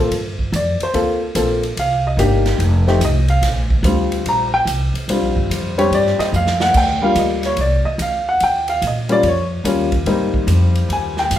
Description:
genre	jazz piano trio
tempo	145 BPM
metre	4/4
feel	swing 66% on 8ths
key	Bb major, Eb major from 6.7 s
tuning	A4 = 440 Hz
part	warm upright piano	melody	0.0-11.4 s	G3 to Bb5	-17 LUFS	left 1 dB	none
part	upright bass	bass	0.0-11.4 s	F1 to Bb2	-19 LUFS	equal	none
part	swinging big-band drum kit	drums	0.1-11.4 s	crash cymbal, hi-hat, kick drum, ride cymbal, snare drum	-24 LUFS	right 1 dB	none
room	wet large studio reverb, RT60 0.9 s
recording	band playing live in one room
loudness	-15 LUFS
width	side -11 dB against mid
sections	0.0-6.7 A section; 6.7-11.4 A section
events	upright piano solo 0.0-11.4; drum fill 6.3-6.7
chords	0.1 Gm11; 1.8 Cm7; 2.6 F7(no3); 3.4 Bb69; 6.7 Ebmaj7; 8.4 Eb9; 10.1 Abmaj9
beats	| 0.12 0.53 0.94 1.36 | 1.77 2.19 2.60 3.02 | 3.43 3.85 4.26 4.67 | 5.09 5.50 5.92 6.33 | 6.75 7.16 7.58 7.99 | 8.41 8.82 9.24 9.65 | 10.07 10.48 10.90 11.31

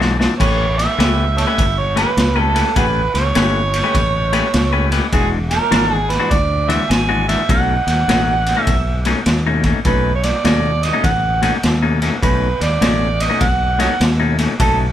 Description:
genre	electric blues shuffle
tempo	102 BPM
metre	4/4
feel	swing 64% on 8ths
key	unclear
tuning	A4 = 442 Hz
part	clean electric guitar	riff	0.0-14.9 s	B2 to B4	-20 LUFS	left 5 dB	none
part	fingered electric bass	bass	0.0-14.9 s	E1 to D#2	-20 LUFS	equal	none
part	raw garage drum kit	drums	0.0-14.8 s	crash cymbal, kick drum, ride cymbal, snare drum	-19 LUFS	equal	none
part	overdriven harmonica	melody	0.4-14.8 s	F#4 to G#5	-19 LUFS	right 4 dB	none
room	moderate studio reverb, RT60 0.8 s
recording	band playing live in one room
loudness	-14 LUFS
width	side -11 dB against mid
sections	0.0-14.9 A section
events	drum fill 0.0-0.4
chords	0.4 A9; 5.1 E9; 7.5 B9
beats	| 0.41 1.00 1.59 2.18 | 2.77 3.36 3.95 4.54 | 5.13 5.72 6.31 6.90 | 7.50 8.09 8.68 9.27 | 9.86 10.45 11.04 11.64 | 12.23 12.82 13.42 14.01 | 14.60

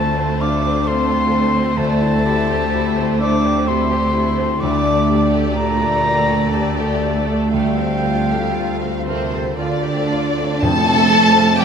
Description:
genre	cinematic, emotional film score for orchestra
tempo	55-66 BPM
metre	3/4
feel	rubato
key	unclear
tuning	A4 = 440 Hz
part	muted symphonic violin section	melody	0.0-11.6 s	C5 to A5	-23 LUFS	left 4 dB	none
part	mellow concert flute	second line	0.0-11.6 s	C5 to D6	-22 LUFS	left 1 dB	none
part	muted symphonic violin section	second line	0.0-11.6 s	G3 to A4	-26 LUFS	right 1 dB	none
part	muted symphonic viola section	accompaniment	0.0-11.6 s	A3 to D5	-25 LUFS	right 3 dB	none
part	warm grand piano	accompaniment	0.0-11.6 s	D2 to D5	-25 LUFS	equal	none
part	mellow French horn section	sustained chords	0.0-11.6 s	Bb2 to D4	-23 LUFS	left 4 dB	none
part	concert harp	arpeggios	0.0-11.6 s	D3 to C6	-26 LUFS	left 8 dB	none
part	muted symphonic cello section	bass	0.0-11.6 s	D2 to A3	-22 LUFS	right 5 dB	none
part	muted symphonic double bass section	bass	0.0-11.6 s	D2 to F2	-26 LUFS	right 4 dB	none
part	tam-tam	percussion	10.6-11.6 s	none	-29 LUFS	left 2 dB	none
part	timpani	percussion	10.6-11.6 s	F2	-24 LUFS	equal	none
room	moderate scoring stage reverb, RT60 2.0 s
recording	none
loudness	-15 LUFS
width	side -7 dB against mid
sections	0.0-10.6 A section; 10.6-11.6 B section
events	band accent 10.6-11.6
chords	0.0 Dm7; 1.8 Am7/D; 4.6 Gsus2/D; 7.5 Fadd9/D; 10.6 F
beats	0.87 | 1.78 2.74 3.68 | 4.61 5.56 6.53 | 7.54 8.56 9.58 | 10.62 11.59

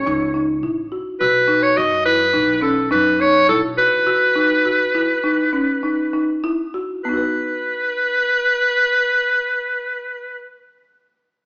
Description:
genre	contemporary instrumental, contemporary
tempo	98-105 BPM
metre	5/4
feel	straight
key	B mixolydian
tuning	A4 = 440 Hz
part	bright clarinet	melody	0.0-10.6 s	A4 to D#5	-16 LUFS	equal	none
part	folk marimba with medium mallets	arpeggios	0.1-10.8 s	B3 to B4	-20 LUFS	equal	none
part	upright bass	bass	0.1-3.8 s	A1 to F#2	-33 LUFS	equal	none
room	wet recital hall reverb, RT60 1.5 s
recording	recorded in a church or concert hall, small speaker sound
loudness	-15 LUFS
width	side -32 dB against mid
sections	0.0-7.0 A section; 7.0-10.1 B section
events	slowing down 2.4-7.0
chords	0.0 F#m7; 1.2 B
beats	0.07 0.64 | 1.21 1.78 2.35 2.92 3.50 | 4.08 4.66 5.25 5.84 6.44 | 7.05 7.66 8.28 8.89 9.50

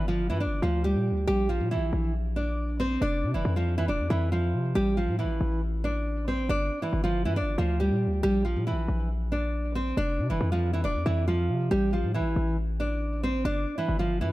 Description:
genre	hip hop, drill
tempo	138 BPM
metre	4/4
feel	half-time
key	A phrygian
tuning	A4 = 440 Hz
part	nylon-string guitar	melody	0.0-14.3 s	E3 to D5	-28 LUFS	right 1 dB	tape echo
part	hard-hitting 808-style bass	bass	0.0-14.3 s	E1 to C3	-28 LUFS	equal	none
room	light reverb, small room reverb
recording	none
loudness	-25 LUFS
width	side -17 dB against mid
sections	0.0-14.3 A section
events	none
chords	0.0 Gm; 1.3 Bb; 3.0 F5; 4.8 Am7; 6.5 G5; 8.2 Bb; 10.0 F5; 11.7 Am7; 13.4 G5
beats	0.41 0.84 | 1.28 1.71 2.15 2.58 | 3.02 3.45 3.88 4.32 | 4.75 5.19 5.62 6.06 | 6.49 6.93 7.36 7.80 | 8.23 8.67 9.10 9.54 | 9.97 10.41 10.84 11.28 | 11.71 12.14 12.58 13.02 | 13.45 13.88 14.32

